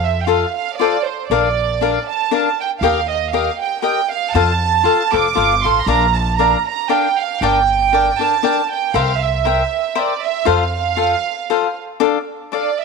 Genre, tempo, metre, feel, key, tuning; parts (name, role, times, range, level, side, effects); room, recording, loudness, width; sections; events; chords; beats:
mexican folk, mariachi; 118 BPM; 3/4; swing 55% on 8ths; F major; A4 = 440 Hz
clear studio violin section; melody; 0.0-12.8 s; C5 to D6; -17 LUFS; right 11 dB
upright bass; bass; 0.0-11.1 s; F1 to F2; -22 LUFS; equal
cavaquinho; accompaniment; 0.3-12.7 s; D4 to G5; -19 LUFS; left 12 dB
moderate plate reverb, RT60 2.4 s; 1960s-style stereo with parts hard left and right; -14 LUFS; side -4 dB against mid
0.0-12.0 A section
0.0 F; 1.3 Bb; 2.8 Eb; 4.3 F; 5.9 Bb; 7.4 Gm; 8.9 C7; 10.5 F; 12.0 Dm
0.28 0.79 | 1.30 1.80 2.31 | 2.81 3.32 3.83 | 4.34 4.85 5.36 | 5.88 6.39 6.91 | 7.42 7.93 8.44 | 8.95 9.45 9.96 | 10.46 10.97 11.49 | 12.00 12.52